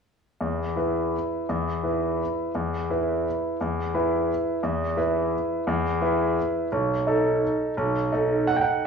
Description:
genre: classical, piano waltz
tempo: 171 BPM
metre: 3/4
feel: uneven beats, rubato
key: unclear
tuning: A4 = 441 Hz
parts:
  - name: bright concert grand piano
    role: solo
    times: 0.4-8.9 s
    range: B1 to G5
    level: -23 LUFS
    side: equal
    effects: none
room: wet recital hall reverb, RT60 1.4 s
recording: worn, warbling old tape, cassette tape, warbly pitch drift, small room ambience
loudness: -23 LUFS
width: side -6 dB against mid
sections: 0.4-8.9 A section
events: none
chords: 0.4 E5; 6.7 B7

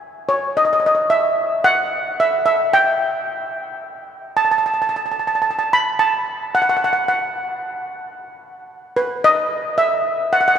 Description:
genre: calypso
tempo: 111 BPM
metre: 4/4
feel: straight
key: unclear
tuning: A4 = 440 Hz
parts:
  - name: steel pan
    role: solo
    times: 0.3-10.6 s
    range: B4 to B5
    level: -16 LUFS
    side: equal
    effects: none
room: wet cathedral reverb, RT60 5.1 s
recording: recorded in a church or concert hall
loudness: -16 LUFS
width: side -8 dB against mid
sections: 0.0-10.6 A section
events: none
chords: none

